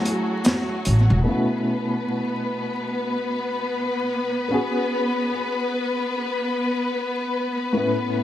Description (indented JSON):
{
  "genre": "trip hop",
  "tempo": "74 BPM",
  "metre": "4/4",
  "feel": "swing 59% on 16ths",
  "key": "F# minor",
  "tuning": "A4 = 441 Hz",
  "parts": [
    { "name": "dark upright piano", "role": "accompaniment", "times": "0.0-8.2 s", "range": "A2 to B4", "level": "-26 LUFS", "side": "left 1 dB", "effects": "tremolo, tape echo" },
    { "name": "warm symphonic string section", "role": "sustained chords", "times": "0.0-8.2 s", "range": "F#3 to B4", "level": "-24 LUFS", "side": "left 1 dB", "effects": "none" },
    { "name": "crunchy breakbeat drum kit", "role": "drums", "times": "0.1-1.1 s", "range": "hi-hat, snare drum", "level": "-23 LUFS", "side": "equal", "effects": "analog delay" },
    { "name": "tube shaker", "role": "percussion", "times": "0.4-0.6 s", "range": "none", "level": "-38 LUFS", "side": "left 2 dB", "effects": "analog delay" },
    { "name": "upright bass", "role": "bass", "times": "0.9-1.2 s", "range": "E1 to A1", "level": "-16 LUFS", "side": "equal", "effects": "none" }
  ],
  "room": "moderate echo chamber reverb, RT60 2.2 s",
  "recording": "echo-heavy mix, vinyl crackle",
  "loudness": "-21 LUFS",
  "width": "side -12 dB against mid",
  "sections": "0.0-1.3 A section; 1.3-8.2 B section",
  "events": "break 0.0-1.3",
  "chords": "0.0 F#m7; 1.3 B9sus4; 4.5 F#sus24/B",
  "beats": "0.46 | 1.27 2.08 2.89 3.70 | 4.51 5.32 6.13 6.94 | 7.75"
}